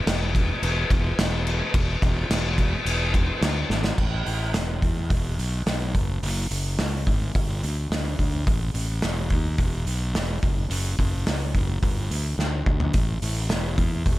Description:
quiet-loud alternative rock; 107 BPM; 4/4; straight; E mixolydian; A4 = 440 Hz
fuzz fingered electric bass; bass; 0.1-14.2 s; E1 to E2; -26 LUFS; equal; overdrive
loose indie drum kit; drums; 0.1-14.2 s; crash cymbal, hi-hat, kick drum, snare drum, toms; -24 LUFS; equal
little or no reverb; -22 LUFS; side -17 dB against mid
0.0-4.0 A section; 4.0-14.2 B section
drum fill 3.7, 12.4-12.9
0.07 0.63 1.18 | 1.74 2.30 2.86 3.42 | 3.98 4.54 5.10 5.66 | 6.22 6.79 7.35 7.91 | 8.47 9.03 9.59 10.15 | 10.71 11.27 11.83 12.39 | 12.95 13.50 14.06

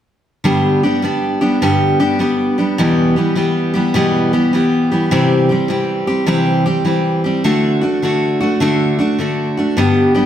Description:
country; 103 BPM; 4/4; swing 65% on 8ths; G major; A4 = 439 Hz
picked steel-string acoustic guitar; solo; 0.4-10.3 s; E2 to G4; -13 LUFS; equal
wet recital hall reverb, RT60 1.8 s; -13 LUFS; side -10 dB against mid
0.4-10.3 A section
0.4 G; 2.8 Em; 5.1 C; 7.4 D
| 0.45 1.03 1.61 2.20 | 2.78 3.36 3.94 4.53 | 5.11 5.69 6.28 6.86 | 7.44 8.03 8.61 9.19 | 9.78

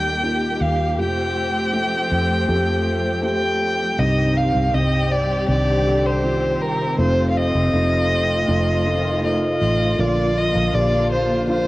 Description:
pop; 80 BPM; 4/4; straight; A4 = 440 Hz
dark violin; melody; 0.0-11.7 s; Bb4 to G5; -22 LUFS; equal; cassette tape, plate reverb
felt-muted upright piano; accompaniment; 0.0-11.7 s; G2 to Bb4; -24 LUFS; equal; cassette tape, plate reverb
dark studio string section; sustained chords; 0.0-11.7 s; C3 to G4; -25 LUFS; left 1 dB; cassette tape, plate reverb
vintage muted fingered electric bass; bass; 0.0-11.7 s; F1 to F2; -22 LUFS; equal
dark French horn section; second line; 4.0-11.7 s; C3 to F4; -29 LUFS; left 2 dB
wet booth ambience, RT60 0.2 s; home recording on cassette; -17 LUFS; side -18 dB against mid
0.0-4.0 A section; 4.0-11.7 B section
0.0 Eb; 1.0 Fadd9; 4.0 Cm; 7.0 F7; 10.0 Bb
0.23 | 0.98 1.73 2.48 3.23 | 3.98 4.73 5.48 6.23 | 6.98 7.73 8.48 9.23 | 9.98 10.73 11.48

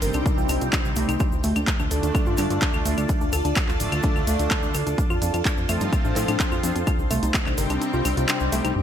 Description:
melodic techno; 127 BPM; 4/4; straight; A4 = 439 Hz
evolving wavetable pad; sustained chords; 0.0-8.8 s; Eb4 to A5; -30 LUFS; equal; ensemble chorus, built-in reverb, phaser, sidechain pumping
woody wave-folded pluck; arpeggios; 0.0-8.8 s; A3 to Bb4; -28 LUFS; equal; chorus, sidechain pumping, ping-pong delay
brassy analog pad; stabs; 0.0-8.8 s; C3 to F4; -30 LUFS; equal; chorus, sidechain pumping, ping-pong delay
plucky analog bass; bass; 0.0-8.8 s; D1 to A2; -26 LUFS; equal; sidechain pumping
punchy analog drum machine; drums; 0.0-8.7 s; claves, handclaps, hi-hat; -28 LUFS; equal; gated reverb
tube shaker; percussion; 0.0-8.7 s; -37 LUFS; left 3 dB
electronic kick drum; drums; 0.3-7.4 s; -24 LUFS; equal; overdrive
sub drop; sound effects; 8.8 s; -24 LUFS; equal
light reverb, digital ambience; bright 1980s-style digital production; -20 LUFS; side -9 dB against mid
0.0-8.8 A section
kick drops out 7.8-8.8
0.0 Cm; 1.2 Dm; 5.0 F; 6.9 Cm
0.26 0.73 | 1.20 1.67 2.15 2.62 | 3.09 3.56 4.04 4.51 | 4.98 5.45 5.93 6.40 | 6.87 7.34 7.82 8.29 | 8.76

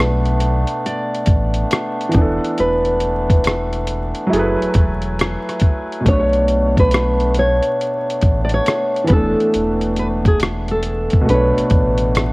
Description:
lo-fi hip hop; 69 BPM; 4/4; swing 64% on 16ths; B dorian; A4 = 442 Hz
nylon-string guitar; melody; 0.0-12.3 s; G#4 to D5; -20 LUFS; equal; low-pass filter, tape echo
felt-muted upright piano; accompaniment; 0.0-12.3 s; B2 to E5; -22 LUFS; equal; cassette tape, low-pass filter
hand-pumped harmonium; sustained chords; 0.0-12.3 s; E3 to G#5; -25 LUFS; equal; low-pass filter
sub bass with octave; bass; 0.0-12.3 s; E1 to B1; -20 LUFS; equal
dusty soul sampler-style drum kit; drums; 0.0-12.3 s; hi-hat, kick drum, rim click; -17 LUFS; equal
studio ambience; worn, warbling old tape, cassette tape, vinyl crackle, warbly pitch drift; -14 LUFS; side -24 dB against mid
0.0-12.3 A section
0.0 Bm7; 2.1 E7sus4; 4.3 F#m11; 6.1 Bm9; 9.1 E7sus4; 11.3 Bm9
0.84 1.71 | 2.58 3.45 4.32 5.19 | 6.06 6.93 7.80 8.67 | 9.54 10.41 11.28 12.15

